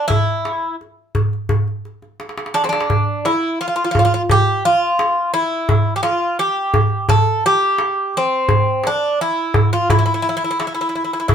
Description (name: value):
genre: Turkish makam ensemble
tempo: 86 BPM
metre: 4/4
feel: straight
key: E makam kurdi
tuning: A4 = 440 Hz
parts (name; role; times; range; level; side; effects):
- Greek bouzouki; melody; 0.0-11.3 s; C4 to A4; -17 LUFS; equal; none
- darbuka; percussion; 0.1-11.3 s; none; -17 LUFS; equal; none
room: wet studio reverb, RT60 0.6 s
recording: minimal, uncompressed stereo recording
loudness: -15 LUFS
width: side -8 dB against mid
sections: 0.0-11.3 A section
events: drum fill 2.2-2.9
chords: none